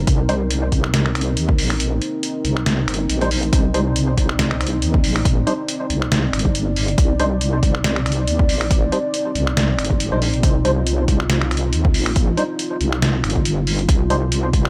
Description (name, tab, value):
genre	deep dubstep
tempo	139 BPM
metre	4/4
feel	swing 55% on 16ths, half-time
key	C minor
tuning	A4 = 440 Hz
part	dark analog pad	sustained chords	0.0-14.7 s	C4 to D5	-27 LUFS	equal	chorus, vintage 12-bit sampler grit
part	wobble bass	bass	0.0-14.7 s	G1 to Eb2	-22 LUFS	equal	chorus
part	electronic kick drum	drums	0.1-14.6 s	none	-20 LUFS	equal	overdrive
part	trip hop sampler-style drum kit	drums	0.1-14.7 s	finger snaps, hi-hat, snare drum	-25 LUFS	equal	none
part	percussive organ stab	stabs	0.3, 3.2-14.2 s	G3 to C5	-27 LUFS	equal	ensemble chorus, dub echo
room	light reverb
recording	none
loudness	-19 LUFS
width	mono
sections	0.0-14.7 A section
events	kick drops out 1.8-3.5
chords	0.0 Cmadd9